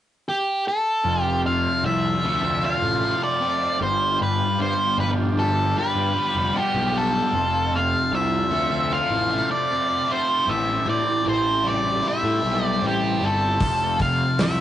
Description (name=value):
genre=psychedelic rock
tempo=76 BPM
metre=4/4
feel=straight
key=F lydian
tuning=A4 = 440 Hz
part: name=octave-fuzz lead guitar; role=melody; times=0.3-14.6 s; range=G4 to F5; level=-22 LUFS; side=equal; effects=distortion
part: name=combo organ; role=sustained chords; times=1.0-14.6 s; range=C4 to A4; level=-32 LUFS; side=right 2 dB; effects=none
part: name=fuzz picked electric bass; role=bass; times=1.0-14.6 s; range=F1 to A2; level=-26 LUFS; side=equal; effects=overdrive
part: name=crunchy overdriven guitar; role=riff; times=1.1-14.6 s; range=F2 to G4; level=-25 LUFS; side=left 1 dB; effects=phaser
part: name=damped 70s drum kit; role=drums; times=13.6-14.6 s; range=hi-hat, kick drum, snare drum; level=-24 LUFS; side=equal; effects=none
room=moderate studio reverb, RT60 0.5 s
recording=rough rehearsal-room recording, nothing above 10.5 kHz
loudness=-20 LUFS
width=side -11 dB against mid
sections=0.0-1.1 A section; 1.1-14.6 B section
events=none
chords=0.0 N.C.; 1.1 F; 3.8 G7; 7.3 F; 10.5 Am7; 13.6 F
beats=0.27 | 1.05 1.84 2.62 3.41 | 4.19 4.98 5.76 6.55 | 7.33 8.12 8.90 9.69 | 10.47 11.26 12.04 12.83 | 13.61 14.40